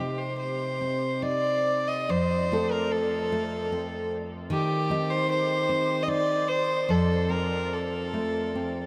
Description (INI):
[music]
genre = celtic folk, Celtic slow air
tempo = 69-77 BPM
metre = 3/4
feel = rubato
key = C dorian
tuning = A4 = 440 Hz
[part]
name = warm fiddle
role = melody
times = 0.0-8.9 s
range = G4 to Eb5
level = -29 LUFS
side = equal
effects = none
[part]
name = nylon-string guitar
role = accompaniment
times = 0.0-8.9 s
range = F2 to A4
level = -31 LUFS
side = equal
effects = none
[sound]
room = wet huge ambient reverb, RT60 8.7 s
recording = in a vast, echoing space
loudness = -27 LUFS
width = mono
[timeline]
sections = 0.0-8.9 A section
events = none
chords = 0.0 Cm; 2.1 F; 4.5 Cm/Eb; 6.9 F